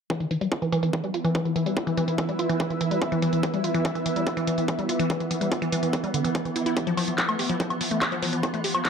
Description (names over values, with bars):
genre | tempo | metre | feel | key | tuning
psychedelic trance | 144 BPM | 4/4 | straight | unclear | A4 = 440 Hz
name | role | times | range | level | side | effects
swarming drone | sustained chords | 0.9-8.9 s | E3 to B3 | -31 LUFS | right 2 dB | built-in reverb, vintage 12-bit sampler grit, sidechain pumping
woody wave-folded pluck | riff | 0.1-8.9 s | D3 to G4 | -26 LUFS | moving between left 4 dB and right 4 dB | chorus, auto-pan, sidechain pumping, dub echo
electronic kick drum | drums | 0.1-8.9 s | none | -30 LUFS | equal | distortion, high-pass filter on kick, high-pass filter on room
techno drum kit | drums | 0.1-8.9 s | handclaps, hi-hat, woodblock | -30 LUFS | equal | low-pass filter on hats, low-pass filter on perc, low-pass filter on snare, low-pass filter on room
granular cloud pad | texture | 1.3-8.9 s | E4 to E6 | -32 LUFS | equal | built-in reverb, sidechain pumping
room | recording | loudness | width
moderate digital room reverb, RT60 1.1 s | dark, warm production | -23 LUFS | side -6 dB against mid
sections
0.1-8.9 A section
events
filter sweep on drum 0.1-8.9; filter sweep on synth arpeggio sound 0.1-8.9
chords
0.1 E5; 6.8 F5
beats
| 0.10 0.52 0.93 1.35 | 1.77 2.18 2.60 3.02 | 3.43 3.85 4.27 4.68 | 5.10 5.52 5.93 6.35 | 6.77 7.18 7.60 8.02 | 8.43 8.85